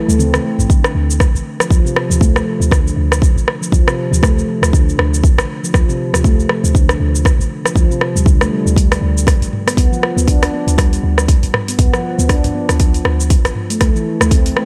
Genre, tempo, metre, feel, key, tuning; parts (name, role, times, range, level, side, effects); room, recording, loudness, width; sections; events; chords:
afro house; 119 BPM; 4/4; swing 58% on 16ths; D dorian; A4 = 440 Hz
handpan; arpeggios; 0.1-14.7 s; C3 to D4; -21 LUFS; equal; sidechain pumping, dub echo
warm 808-style bass; bass; 0.1-14.5 s; A1 to D2; -19 LUFS; equal; sidechain pumping
afro-pop drum kit; drums; 0.1-14.7 s; cabasa, hi-hat, rim click, toms; -21 LUFS; equal
electronic kick drum; drums; 0.7-14.4 s; -15 LUFS; equal
little or no reverb; -14 LUFS; mono
0.0-14.7 A section
drum fill 0.0-0.7; kick drops out 0.2-0.7
0.0 F (rootless); 0.7 Dm; 8.8 G (rootless); 12.8 F (rootless)